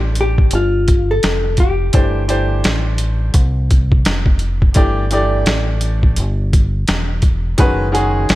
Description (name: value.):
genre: hip hop, jazz-hop.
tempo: 85 BPM.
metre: 4/4.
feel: swing 58% on 16ths.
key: unclear.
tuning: A4 = 440 Hz.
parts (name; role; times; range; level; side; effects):
clear upright piano; accompaniment; 0.0-8.4 s; Eb3 to D5; -19 LUFS; equal; none.
deep dub fingered electric bass; bass; 0.0-8.4 s; E1 to C2; -18 LUFS; equal; none.
hollow-body jazz guitar; melody; 0.2-4.4 s; F4 to A4; -20 LUFS; left 2 dB; none.
boom bap sampler-style drum kit; drums; 0.2-8.4 s; hi-hat, kick drum, snare drum; -14 LUFS; equal; none.
room: digital ambience.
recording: none.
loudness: -13 LUFS.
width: side -17 dB against mid.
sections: 0.0-8.4 A section.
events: none.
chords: 0.0 G9sus4; 7.6 F#sus4.